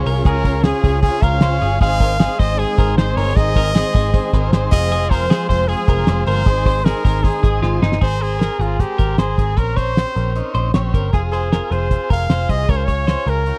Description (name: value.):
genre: jangly indie pop.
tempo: 154 BPM.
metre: 4/4.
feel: straight.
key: Ab major.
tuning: A4 = 437 Hz.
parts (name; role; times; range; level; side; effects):
combo organ; accompaniment; 0.0-13.6 s; Ab3 to Eb5; -30 LUFS; equal; none.
dark studio string section; sustained chords; 0.0-8.0 s; Db3 to Ab4; -29 LUFS; equal; none.
twelve-string electric guitar; arpeggios; 0.0-13.6 s; Eb4 to Db5; -28 LUFS; equal; none.
vintage muted picked electric bass; bass; 0.0-13.5 s; F1 to Db2; -22 LUFS; equal; none.
cloth-damped thuddy drum kit; drums; 0.1-13.6 s; crash cymbal, hi-hat, kick drum, snare drum; -18 LUFS; equal; none.
bright trumpet; melody; 0.3-13.6 s; F4 to F5; -24 LUFS; equal; none.
room: little or no reverb.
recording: dry, close 1970s-style studio recording.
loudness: -17 LUFS.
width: mono.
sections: 0.0-8.0 A section; 8.0-13.6 B section.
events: drum fill 7.6-8.0.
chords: 0.0 Db; 1.8 Ab; 4.7 Fm; 6.5 Ab; 8.0 Abadd9; 9.6 Bbmadd9; 11.1 Fm; 12.7 Db.